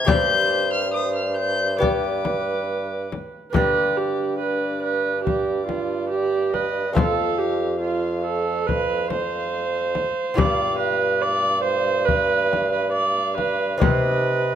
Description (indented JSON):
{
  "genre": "classical, renaissance-style consort dance",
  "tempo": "70 BPM",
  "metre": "4/4",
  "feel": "straight",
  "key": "unclear",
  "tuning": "A4 = 436 Hz",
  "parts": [
    { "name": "dark violin", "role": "melody", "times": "0.0-14.6 s", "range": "D5 to G6", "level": "-29 LUFS", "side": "left 6 dB", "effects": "none" },
    { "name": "dark viola", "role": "second line", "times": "0.0-14.6 s", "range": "F4 to D5", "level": "-23 LUFS", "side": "right 4 dB", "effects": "none" },
    { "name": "lute", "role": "accompaniment", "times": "0.0-14.6 s", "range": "F2 to D5", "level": "-28 LUFS", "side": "left 4 dB", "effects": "none" },
    { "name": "warm bassoon", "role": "bass", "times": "0.0-14.6 s", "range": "F2 to C3", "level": "-26 LUFS", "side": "right 1 dB", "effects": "none" },
    { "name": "frame drum", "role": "percussion", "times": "0.1-14.2 s", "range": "none", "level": "-23 LUFS", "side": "left 4 dB", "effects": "none" }
  ],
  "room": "moderate recital hall reverb, RT60 1.5 s",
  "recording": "close, detailed microphones",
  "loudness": "-19 LUFS",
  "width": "side -9 dB against mid",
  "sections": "0.0-3.5 A section; 3.5-14.6 B section",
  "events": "none",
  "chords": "0.1 Gsus4; 1.8 G; 3.5 G5; 7.0 F; 10.4 G7; 13.8 Cm"
}